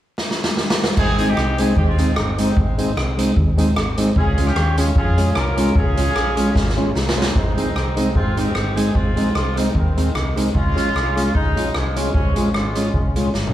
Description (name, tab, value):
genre	ska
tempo	150 BPM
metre	4/4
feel	swing 55% on 8ths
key	Ab major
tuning	A4 = 440 Hz
part	street-band drum kit	drums	0.2-13.5 s	crash cymbal, hi-hat, kick drum, rim click, snare drum, toms	-21 LUFS	equal	none
part	warm horn section	melody	1.0-13.3 s	Eb3 to Bb4	-24 LUFS	equal	none
part	hollow-body short-scale fingered electric bass	bass	1.0-13.5 s	G1 to F2	-22 LUFS	equal	none
part	mellow electric guitar	accompaniment	1.2-13.3 s	Ab3 to F4	-24 LUFS	right 2 dB	none
part	tonewheel organ	stabs	1.2-13.3 s	Ab3 to Ab4	-25 LUFS	left 2 dB	overdrive, chorus vibrato, slow rotary speaker
room	wet large studio reverb, RT60 1.3 s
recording	band playing live in one room, vinyl crackle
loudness	-16 LUFS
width	side -12 dB against mid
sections	1.0-7.4 A section; 7.4-13.5 B section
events	drum fill 0.2-1.0, 6.6-7.4, 13.3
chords	0.0 N.C.; 1.0 Ab; 4.2 Db; 7.4 Ab; 10.5 Db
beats	0.18 0.58 | 0.98 1.38 1.77 2.17 | 2.57 2.97 3.37 3.77 | 4.16 4.56 4.96 5.36 | 5.76 6.16 6.55 6.95 | 7.35 7.75 8.15 8.55 | 8.95 9.35 9.75 10.15 | 10.55 10.95 11.35 11.74 | 12.14 12.54 12.94 13.34